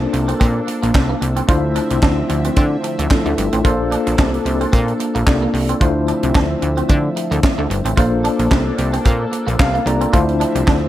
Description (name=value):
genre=early-eighties boogie funk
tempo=111 BPM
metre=4/4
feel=swing 56% on 16ths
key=D minor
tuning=A4 = 440 Hz
part: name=barky tine electric piano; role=accompaniment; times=0.0-10.9 s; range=A3 to Bb5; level=-20 LUFS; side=left 2 dB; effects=fast stereo tremolo
part: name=brassy analog pad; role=sustained chords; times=0.0-10.9 s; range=D3 to E5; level=-26 LUFS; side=equal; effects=chorus, phaser
part: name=plucky analog bass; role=bass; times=0.0-10.9 s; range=G1 to D3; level=-19 LUFS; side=equal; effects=none
part: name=clean electric guitar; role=riff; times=0.1-10.8 s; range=A3 to F4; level=-25 LUFS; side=right 4 dB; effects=ensemble chorus
part: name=tight funk drum kit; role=drums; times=0.1-10.8 s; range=handclaps, hi-hat, kick drum, snare drum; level=-17 LUFS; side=equal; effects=gated reverb
room=small room ambience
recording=none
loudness=-14 LUFS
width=side -13 dB against mid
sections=0.0-10.9 A section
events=tine electric piano fill 9.3-10.1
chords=0.0 Bbmaj9; 1.5 Dm9; 3.6 Bbmaj9; 5.8 Dm9; 8.0 Bbmaj9; 10.1 Dm9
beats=0.41 0.95 | 1.49 2.03 2.57 3.11 | 3.65 4.19 4.73 5.27 | 5.81 6.35 6.89 7.43 | 7.97 8.51 9.05 9.60 | 10.13 10.68